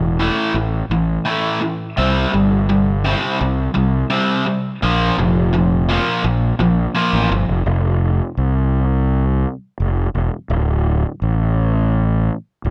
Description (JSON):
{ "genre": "post-rock", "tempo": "84 BPM", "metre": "4/4", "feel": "straight", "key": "unclear", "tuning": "A4 = 440 Hz", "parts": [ { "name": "biting overdriven guitar", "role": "riff", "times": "0.0-7.6 s", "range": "A2 to C4", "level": "-20 LUFS", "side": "equal", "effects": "none" }, { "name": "fuzz fingered electric bass", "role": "bass", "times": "0.0-12.7 s", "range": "D1 to C2", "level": "-19 LUFS", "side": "equal", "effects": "overdrive" } ], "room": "light reverb", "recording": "none", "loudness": "-18 LUFS", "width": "mono", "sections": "0.0-7.7 A section; 7.7-12.7 B section", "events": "build-up 0.0-7.7", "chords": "0.0 A5; 2.0 C5; 4.8 Bb5; 7.7 F5; 10.5 D5", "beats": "0.56 1.27 | 1.98 2.69 3.40 4.11 | 4.82 5.53 6.24 6.96 | 7.67 8.38 9.09 9.80 | 10.51 11.22 11.93 12.64" }